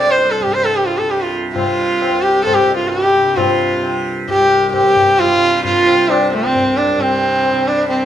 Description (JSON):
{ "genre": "indian classical, Hindustani", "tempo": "132 BPM", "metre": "4/4", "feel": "straight", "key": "C raga durga", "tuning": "A4 = 440 Hz", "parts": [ { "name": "rich sarangi", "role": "melody", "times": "0.0-8.1 s", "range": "C4 to D5", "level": "-13 LUFS", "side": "equal", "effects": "none" }, { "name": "tanpura", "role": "drone", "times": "0.0-8.1 s", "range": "C2 to C3", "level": "-24 LUFS", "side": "equal", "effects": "none" }, { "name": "tabla", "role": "percussion", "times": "0.2-8.1 s", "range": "none", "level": "-22 LUFS", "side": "left 5 dB", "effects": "none" } ], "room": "moderate recital hall reverb, RT60 1.4 s", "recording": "minimal, uncompressed stereo recording", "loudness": "-12 LUFS", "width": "side -10 dB against mid", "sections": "0.0-8.1 A section", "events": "none", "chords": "none" }